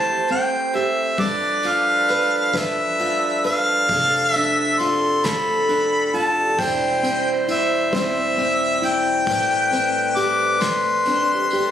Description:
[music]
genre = acoustic folk-pop ballad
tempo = 45 BPM (dotted quarters)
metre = 6/8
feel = straight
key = A minor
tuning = A4 = 440 Hz
[part]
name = warm harmonica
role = melody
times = 0.0-11.7 s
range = D5 to D6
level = -19 LUFS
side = left 1 dB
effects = none
[part]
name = clear clarinet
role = second line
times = 0.0-11.7 s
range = A4 to C5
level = -26 LUFS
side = right 3 dB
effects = none
[part]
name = nylon-string guitar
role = accompaniment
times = 0.0-11.7 s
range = A2 to C5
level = -26 LUFS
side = left 2 dB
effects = none
[part]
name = pedal harmonium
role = sustained chords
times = 0.0-11.7 s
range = F3 to B4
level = -29 LUFS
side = equal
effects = none
[part]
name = felt-muted upright piano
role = arpeggios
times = 0.0-1.9, 6.1-11.7 s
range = C4 to A4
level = -34 LUFS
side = right 6 dB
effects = none
[part]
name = soft brush drum kit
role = drums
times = 0.3-11.7 s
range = kick drum, ride cymbal, snare drum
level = -32 LUFS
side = right 2 dB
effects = none
[part]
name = upright bass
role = bass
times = 3.9-11.7 s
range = E1 to A1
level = -38 LUFS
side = left 1 dB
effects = none
[sound]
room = light reverb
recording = recorded on a phone in the room, studio reverb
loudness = -17 LUFS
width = side -10 dB against mid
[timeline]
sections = 0.0-11.7 A section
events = none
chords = 0.0 Am7; 1.2 G7; 3.9 F6; 6.6 C/E; 9.3 Am7

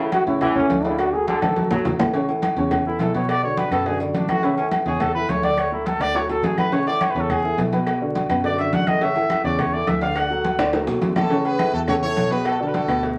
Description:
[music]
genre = latin, salsa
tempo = 209 BPM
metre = 4/4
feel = straight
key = A major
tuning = A4 = 442 Hz
[part]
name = warm trombone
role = melody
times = 0.0-1.8 s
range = C#4 to A4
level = -24 LUFS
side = equal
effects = none
[part]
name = bright trombone section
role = second line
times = 0.0-1.9 s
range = C#3 to F#3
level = -29 LUFS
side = equal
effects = none
[part]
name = dark upright piano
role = accompaniment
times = 0.0-13.1 s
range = B2 to D5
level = -27 LUFS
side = equal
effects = none
[part]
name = fingered electric bass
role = bass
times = 0.0-13.2 s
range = G#1 to A2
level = -31 LUFS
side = equal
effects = none
[part]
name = claves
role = percussion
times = 0.1-13.0 s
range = none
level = -40 LUFS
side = equal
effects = none
[part]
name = congas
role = percussion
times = 0.1-13.2 s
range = none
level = -29 LUFS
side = equal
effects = none
[part]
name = cowbell and bongos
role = percussion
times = 0.1-13.2 s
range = none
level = -33 LUFS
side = equal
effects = none
[part]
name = timbales and agogo bells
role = percussion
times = 0.1-13.0 s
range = none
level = -28 LUFS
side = equal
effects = none
[part]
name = warm trumpet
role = melody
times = 2.9-10.6 s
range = B3 to F#5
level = -26 LUFS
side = equal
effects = none
[part]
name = brilliant horn section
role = melody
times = 11.2-13.0 s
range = E4 to C#5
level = -27 LUFS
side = equal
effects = none
[sound]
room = wet studio reverb, RT60 0.6 s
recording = vinyl crackle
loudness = -21 LUFS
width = mono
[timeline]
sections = 0.0-2.1 A section; 2.1-11.3 B section; 11.3-13.2 C section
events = drum fill 1.4-2.1, 6.1-6.7, 10.6-11.3; trumpet solo 2.1-11.3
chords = 0.0 A; 1.0 Dadd9; 2.1 A; 3.3 Bm7; 4.4 A; 5.6 Dadd9; 6.7 A; 7.9 Bm7; 9.0 A; 10.2 Dadd9; 11.3 A; 12.5 Bm7

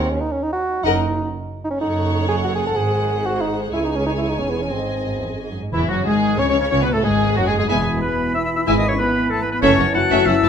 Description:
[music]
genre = classical, dramatic, fast romantic movement for symphony orchestra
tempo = 186 BPM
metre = 3/4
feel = straight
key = C# minor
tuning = A4 = 441 Hz
[part]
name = rich symphonic violin section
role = melody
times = 0.0-10.5 s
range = E4 to A5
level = -28 LUFS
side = left 4 dB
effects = none
[part]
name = warm symphonic violin section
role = second line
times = 0.0-10.5 s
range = A3 to Eb5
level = -27 LUFS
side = left 2 dB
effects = none
[part]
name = mellow bassoon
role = accompaniment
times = 0.0-10.5 s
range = E3 to A4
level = -24 LUFS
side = right 1 dB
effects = none
[part]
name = rich symphonic viola section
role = accompaniment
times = 0.0-10.5 s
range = E3 to Bb4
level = -25 LUFS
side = right 1 dB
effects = none
[part]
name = rich studio double bass section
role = bass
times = 0.0-10.5 s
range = E1 to Eb2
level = -26 LUFS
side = right 2 dB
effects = none
[part]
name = rich symphonic cello section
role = bass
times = 0.0-10.5 s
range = C#2 to C#3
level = -26 LUFS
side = right 2 dB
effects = none
[part]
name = bright clarinet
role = second line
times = 5.7-10.5 s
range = E4 to F#5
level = -23 LUFS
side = left 2 dB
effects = none
[part]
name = silver concert flute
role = second line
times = 5.7-10.5 s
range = E5 to F#6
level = -28 LUFS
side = left 3 dB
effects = none
[part]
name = warm oboe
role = second line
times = 5.7-10.5 s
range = E4 to B5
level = -28 LUFS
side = right 2 dB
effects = none
[part]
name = mellow French horn section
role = sustained chords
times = 5.7-10.5 s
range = E3 to F#4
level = -23 LUFS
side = left 7 dB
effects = none
[part]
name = timpani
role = percussion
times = 5.7-6.2 s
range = C#3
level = -35 LUFS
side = right 2 dB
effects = none
[sound]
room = moderate recital hall reverb, RT60 1.5 s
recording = none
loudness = -17 LUFS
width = side -7 dB against mid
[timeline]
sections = 0.0-5.7 A section; 5.7-10.5 B section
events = none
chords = 0.0 Ebm7; 0.8 Ebm/Gb; 1.8 D#m7b5/F#; 2.8 G#7; 3.7 C#5; 4.4 C#m/E; 4.7 G#; 5.7 C#m/E; 6.7 C#5; 7.7 E; 8.7 E/G#; 9.6 F#m7

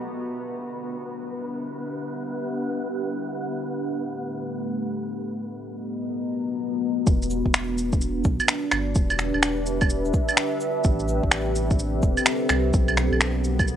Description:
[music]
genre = future garage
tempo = 127 BPM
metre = 4/4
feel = swing 64% on 16ths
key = E minor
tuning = A4 = 435 Hz
[part]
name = deep dark ambient pad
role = sustained chords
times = 0.0-13.8 s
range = A3 to E5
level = -27 LUFS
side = equal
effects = chorus, built-in reverb, sidechain pumping
[part]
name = wind-like tuned noise texture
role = texture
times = 0.1-7.1 s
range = B3 to B4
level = -35 LUFS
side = equal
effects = built-in reverb
[part]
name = warm sub bass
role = bass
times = 7.1-13.8 s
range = E1 to C2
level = -27 LUFS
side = equal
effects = sidechain pumping
[part]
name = electronic kick drum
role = drums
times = 7.1-13.7 s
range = none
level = -22 LUFS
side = equal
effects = vintage 12-bit sampler grit, small room reverb
[part]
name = electronic shaker, cabasa, finger snaps and claves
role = drums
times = 7.1-13.8 s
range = none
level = -23 LUFS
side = right 1 dB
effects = vintage 12-bit sampler grit, small room reverb
[sound]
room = moderate lush hall reverb, RT60 1.9 s, digital ambience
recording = bright 1980s-style digital production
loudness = -22 LUFS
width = side -10 dB against mid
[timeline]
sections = 0.0-7.1 A section; 7.1-13.8 B section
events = filter sweep on ambient pad 0.0-7.1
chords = 0.0 Em7; 3.3 A5; 5.2 Bmaj7; 7.1 Em7; 10.8 Am7; 12.7 Bmaj7

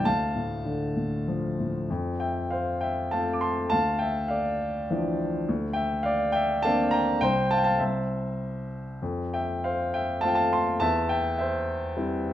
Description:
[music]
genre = classical, lyrical solo piano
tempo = 94-105 BPM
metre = 3/4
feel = rubato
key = F major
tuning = A4 = 441 Hz
[part]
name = dark baby grand piano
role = solo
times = 0.0-12.3 s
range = C2 to D6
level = -24 LUFS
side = equal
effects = none
[sound]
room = moderate recital hall reverb, RT60 1.4 s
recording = none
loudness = -24 LUFS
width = side -12 dB against mid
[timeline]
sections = 0.0-1.9 A section; 1.9-12.3 B section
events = none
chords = 0.1 Dm; 1.9 F; 3.7 Dmadd9; 5.5 Bbadd9/D; 7.2 F5/C; 7.8 N.C.; 9.0 F; 10.8 C/E

